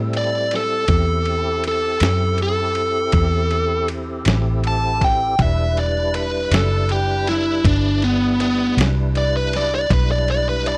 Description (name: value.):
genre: slow blues.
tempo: 53 BPM (dotted quarters).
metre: 12/8.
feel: straight.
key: E minor.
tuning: A4 = 440 Hz.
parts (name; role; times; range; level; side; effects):
tonewheel organ; sustained chords; 0.0-10.8 s; G3 to B4; -30 LUFS; equal; slow rotary speaker, overdrive, chorus vibrato.
vintage muted fingered electric bass; bass; 0.0-10.8 s; E1 to A2; -23 LUFS; equal; none.
dusty soul sampler-style drum kit; drums; 0.1-10.8 s; kick drum, ride cymbal, snare drum; -24 LUFS; equal; none.
biting lead guitar; melody; 0.2-10.8 s; B3 to A5; -22 LUFS; equal; overdrive.
room: little or no reverb.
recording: dry, close 1970s-style studio recording.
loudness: -19 LUFS.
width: mono.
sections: 0.0-10.8 A section.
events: lead electric guitar solo 0.0-10.8.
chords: 0.0 Am7; 5.4 Em7.